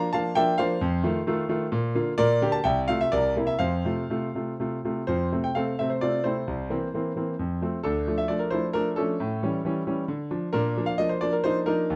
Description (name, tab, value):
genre	classical-period piano sonatina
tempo	132 BPM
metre	3/4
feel	rubato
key	F major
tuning	A4 = 440 Hz
part	clear grand piano	solo	0.0-12.0 s	C2 to Bb5	-26 LUFS	equal	none
room	light reverb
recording	dark, warm production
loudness	-26 LUFS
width	mono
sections	0.0-5.1 A section; 5.1-12.0 A section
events	none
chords	0.0 Bb; 0.8 F7; 1.7 Bb; 2.2 Gm/Bb; 2.6 F/C; 3.1 C7; 3.6 F; 6.5 C7; 7.4 F; 7.8 Dm; 9.2 A7; 10.1 Dm; 10.5 Bb